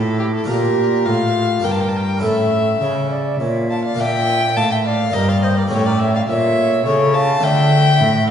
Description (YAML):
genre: classical, baroque-style sonata movement with continuo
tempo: 104 BPM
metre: 3/4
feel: straight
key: unclear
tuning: A4 = 440 Hz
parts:
  - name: warm violin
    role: melody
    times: 0.0-8.3 s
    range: G4 to A5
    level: -20 LUFS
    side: left 4 dB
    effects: none
  - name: baroque flute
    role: second line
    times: 0.0-8.3 s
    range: E4 to F5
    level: -21 LUFS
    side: right 3 dB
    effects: none
  - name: harpsichord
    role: accompaniment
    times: 0.0-8.3 s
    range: G2 to Bb4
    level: -24 LUFS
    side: left 2 dB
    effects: none
  - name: rich cello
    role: bass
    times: 0.0-8.3 s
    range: G2 to D3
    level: -18 LUFS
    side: right 1 dB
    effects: none
room: wet recital hall reverb, RT60 1.8 s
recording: heard from further back in the room, nothing above 10.7 kHz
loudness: -14 LUFS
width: side -8 dB against mid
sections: 0.0-4.0 A section; 4.0-8.3 B section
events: none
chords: 0.5 Bb; 1.6 Gm; 2.2 A; 4.0 Bb; 5.1 Eb/G; 5.7 A7; 7.4 Dm